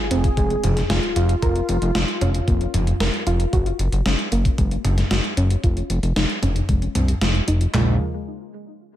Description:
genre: synthwave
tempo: 114 BPM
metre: 4/4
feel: straight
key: Bb minor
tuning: A4 = 440 Hz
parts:
  - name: wide unison lead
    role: melody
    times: 0.0-3.4 s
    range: F4 to Ab4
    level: -27 LUFS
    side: equal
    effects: ping-pong delay
  - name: soft round pluck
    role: arpeggios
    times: 0.0-8.0 s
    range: Ab3 to Bb4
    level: -28 LUFS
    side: right 1 dB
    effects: chorus, ping-pong delay
  - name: sub drop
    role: sound effects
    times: 0.0-1.4 s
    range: none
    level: -34 LUFS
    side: left 1 dB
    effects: none
  - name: fat analog bass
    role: bass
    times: 0.1-8.0 s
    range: F1 to C2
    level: -20 LUFS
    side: equal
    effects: sidechain pumping
  - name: gated 80s digital drum machine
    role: drums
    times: 0.1-7.7 s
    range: hi-hat, snare drum, toms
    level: -25 LUFS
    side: equal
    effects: gated reverb, gated reverb snare, overdrive
  - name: gated 80s digital drum machine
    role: drums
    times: 0.2-7.9 s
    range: handclaps, kick drum, snare drum, toms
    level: -21 LUFS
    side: equal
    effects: gated reverb, gated reverb snare, overdrive
  - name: brassy analog pad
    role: sustained chords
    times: 7.7-8.0 s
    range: Db3 to F4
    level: -30 LUFS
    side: equal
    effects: chorus, sidechain pumping
room: light reverb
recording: none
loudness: -18 LUFS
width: side -12 dB against mid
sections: 0.0-7.7 A section; 7.7-9.0 B section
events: impact 0.0-1.4; filter sweep on analog synth bass 0.0-7.7; filter sweep on synth arpeggio sound 0.0-7.7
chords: 0.0 Fm; 1.4 Bbm/F; 3.5 Gbadd9; 5.6 Dbadd9/F; 7.7 Bbm7

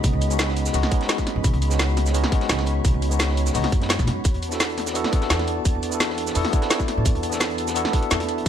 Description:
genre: liquid drum and bass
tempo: 171 BPM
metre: 4/4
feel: straight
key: C# phrygian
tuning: A4 = 440 Hz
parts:
  - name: tine electric piano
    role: accompaniment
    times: 0.0-8.5 s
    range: G#3 to A4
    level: -26 LUFS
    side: equal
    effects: slow stereo tremolo, tape echo
  - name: glassy FM pad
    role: sustained chords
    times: 0.0-8.5 s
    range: F#4 to B5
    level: -32 LUFS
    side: left 1 dB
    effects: ensemble chorus, built-in reverb, sidechain pumping
  - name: upright bass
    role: bass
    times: 0.0-8.5 s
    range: B1 to A2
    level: -24 LUFS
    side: equal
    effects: tube saturation
  - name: crunchy breakbeat drum kit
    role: drums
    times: 0.0-8.5 s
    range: hi-hat, snare drum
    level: -34 LUFS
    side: equal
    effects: high-pass filter on hats, high-pass filter on snare, high-pass filter on room
  - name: drum and bass drum kit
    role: drums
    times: 0.0-8.5 s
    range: hi-hat, shaker, snare drum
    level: -25 LUFS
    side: equal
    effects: none
  - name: electronic kick drum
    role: drums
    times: 0.0-8.5 s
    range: none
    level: -22 LUFS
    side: equal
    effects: none
room: small room ambience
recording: none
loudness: -19 LUFS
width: side -9 dB against mid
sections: 0.0-8.5 A section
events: none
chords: 0.0 C#9sus4; 4.2 E9sus4

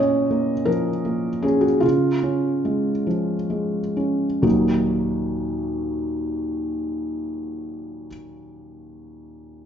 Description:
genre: neoclassical minimalist piano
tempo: 42-59 BPM (dotted quarters)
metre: 6/8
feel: rubato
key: Eb minor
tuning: A4 = 440 Hz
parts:
  - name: felt-muted upright piano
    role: solo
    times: 0.0-9.7 s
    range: Eb2 to Eb5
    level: -21 LUFS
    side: equal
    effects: none
room: moderate large studio reverb, RT60 1.2 s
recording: band playing live in one room, nothing above 7.8 kHz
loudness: -20 LUFS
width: side -8 dB against mid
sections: 0.0-4.4 A section; 4.4-9.7 B section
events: slowing down 0.0-4.4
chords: 0.0 Bbm; 1.8 Db; 4.4 Ebm

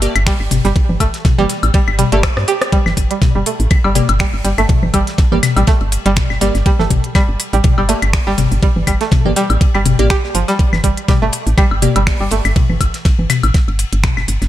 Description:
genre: minimal techno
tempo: 122 BPM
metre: 4/4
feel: swing 55% on 16ths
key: G minor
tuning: A4 = 441 Hz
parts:
  - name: wavetable chord stab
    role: stabs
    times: 0.0-11.9 s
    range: Bb3 to D5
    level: -23 LUFS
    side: right 1 dB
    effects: cassette tape, tape echo
  - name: woody FM bass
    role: bass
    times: 0.0-14.5 s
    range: G1 to G2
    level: -17 LUFS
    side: equal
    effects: sidechain pumping
  - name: damped 70s drum kit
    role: drums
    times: 0.0-14.5 s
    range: hi-hat, ride cymbal, snare drum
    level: -30 LUFS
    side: left 3 dB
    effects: high-pass filter on cymbals, high-pass filter on hats, high-pass filter on snare, high-pass filter on room
  - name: minimal click drum kit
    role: drums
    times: 0.0-14.5 s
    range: finger snaps, hi-hat, rim click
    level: -22 LUFS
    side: equal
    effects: none
  - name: electronic woodblock, toms and congas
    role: percussion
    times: 0.2-14.3 s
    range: none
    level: -19 LUFS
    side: left 5 dB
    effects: tape echo
  - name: string-like resonator pluck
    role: riff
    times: 0.3-12.3 s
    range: F3 to G4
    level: -19 LUFS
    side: right 3 dB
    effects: chorus, sidechain pumping, dub echo
  - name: electronic kick drum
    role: drums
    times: 0.3-14.1 s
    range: none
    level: -14 LUFS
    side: equal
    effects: none
room: digital ambience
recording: none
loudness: -12 LUFS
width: side -13 dB against mid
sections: 0.0-14.5 A section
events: drum fill 2.2-2.7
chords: none

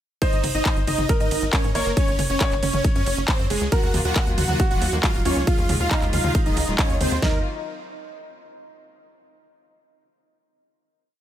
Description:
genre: uplifting trance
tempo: 137 BPM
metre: 4/4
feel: straight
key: Eb dorian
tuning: A4 = 440 Hz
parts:
  - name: supersaw chords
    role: melody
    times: 0.2-7.4 s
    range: Ab3 to Gb5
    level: -26 LUFS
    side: right 1 dB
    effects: sidechain pumping, ping-pong delay
  - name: warm concert grand piano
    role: second line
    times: 0.2-7.4 s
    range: Eb4 to Db5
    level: -30 LUFS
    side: equal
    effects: ping-pong delay
  - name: big-room dance drum kit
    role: drums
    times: 0.2-7.3 s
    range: kick drum, snare drum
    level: -22 LUFS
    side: equal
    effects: none
  - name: big-room dance drum kit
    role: drums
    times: 0.2-7.2 s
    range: handclaps, hi-hat, ride cymbal, toms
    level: -27 LUFS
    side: equal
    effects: none
  - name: tight sequencer bass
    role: bass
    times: 0.3-7.4 s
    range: Eb1 to Ab2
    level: -27 LUFS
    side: equal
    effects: sidechain pumping
  - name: dark symphonic string section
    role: sustained chords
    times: 3.7-7.4 s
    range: Eb3 to F4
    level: -30 LUFS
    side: left 1 dB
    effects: sidechain pumping
room: little or no reverb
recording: none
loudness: -19 LUFS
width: side -11 dB against mid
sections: 0.2-7.2 drop; 7.2-9.0 final chord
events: drop 0.2-7.2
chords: 0.2 Ab; 2.0 Gb5; 3.7 Ebmadd9

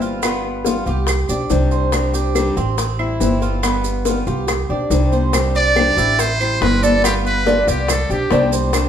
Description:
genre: latin, Cuban son and guajira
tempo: 141 BPM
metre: 4/4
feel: straight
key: C major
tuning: A4 = 440 Hz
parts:
  - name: nylon-string guitar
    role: accompaniment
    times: 0.0-8.9 s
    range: C3 to G4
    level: -23 LUFS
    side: left 2 dB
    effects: none
  - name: Cuban tres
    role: arpeggios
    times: 0.0-8.9 s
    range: B3 to D5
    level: -22 LUFS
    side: right 2 dB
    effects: none
  - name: upright bass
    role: bass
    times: 0.0-8.9 s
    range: G1 to C2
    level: -20 LUFS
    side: right 1 dB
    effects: none
  - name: bongos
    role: percussion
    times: 0.0-8.9 s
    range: none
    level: -25 LUFS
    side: left 4 dB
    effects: none
  - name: maracas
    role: percussion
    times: 0.0-8.9 s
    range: none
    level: -29 LUFS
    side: right 6 dB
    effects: none
  - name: claves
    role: percussion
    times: 0.2-8.9 s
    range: none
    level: -29 LUFS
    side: right 4 dB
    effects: none
  - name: congas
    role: percussion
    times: 0.2-8.9 s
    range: none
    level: -26 LUFS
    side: left 5 dB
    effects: none
  - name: trumpet with metal mute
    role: melody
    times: 5.6-8.5 s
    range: G4 to D5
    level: -19 LUFS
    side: right 2 dB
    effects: none
room: moderate large studio reverb, RT60 1.1 s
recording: band playing live in one room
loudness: -15 LUFS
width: side -9 dB against mid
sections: 0.0-5.3 A section; 5.3-8.9 B section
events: none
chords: 0.2 G7; 1.1 Csus2; 2.8 Am7; 3.6 G7; 4.5 Csus2; 6.2 Am7; 7.0 G7; 7.9 Csus2

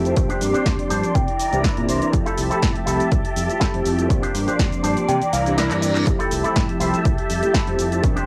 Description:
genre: filtered disco house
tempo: 122 BPM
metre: 4/4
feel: swing 54% on 16ths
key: F major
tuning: A4 = 440 Hz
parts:
  - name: mellow synth brass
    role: accompaniment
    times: 0.0-8.3 s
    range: E3 to C5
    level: -27 LUFS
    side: equal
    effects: chorus, phaser, sidechain pumping, low-pass filter, cassette tape
  - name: string machine, full ensemble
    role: sustained chords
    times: 0.0-8.3 s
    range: E3 to C6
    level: -28 LUFS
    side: equal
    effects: ensemble chorus, sidechain pumping, low-pass filter, cassette tape
  - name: modern bright fingered electric bass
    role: bass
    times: 0.0-8.2 s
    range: Bb1 to C3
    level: -28 LUFS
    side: equal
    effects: sidechain pumping, low-pass filter
  - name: punchy analog drum machine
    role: drums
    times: 0.1-8.3 s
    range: cabasa, handclaps, hi-hat, snare drum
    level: -30 LUFS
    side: equal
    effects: sidechain pumping on hats, cassette tape, sidechain pumping on perc
  - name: electric guitar with an envelope filter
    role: riff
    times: 0.2-8.3 s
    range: D4 to A5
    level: -28 LUFS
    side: equal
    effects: vintage 12-bit sampler grit, sidechain pumping, low-pass filter, cassette tape
  - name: electronic kick drum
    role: drums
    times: 0.2-8.1 s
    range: none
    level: -24 LUFS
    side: equal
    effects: cassette tape
  - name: reverse cymbal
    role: sound effects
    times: 5.5-6.1 s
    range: none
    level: -35 LUFS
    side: equal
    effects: none
room: light reverb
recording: home recording on cassette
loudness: -20 LUFS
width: mono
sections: 0.0-8.3 A section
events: clean electric guitar fill 0.7-2.1, 4.6-6.1; kick drops out 5.1-6.1; reverse cymbal 5.5-6.1; drum fill 5.7-6.1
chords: 0.2 Bb69; 1.1 C9; 2.1 Fmaj9; 4.1 Bb69; 5.1 C9; 6.1 Fmaj9

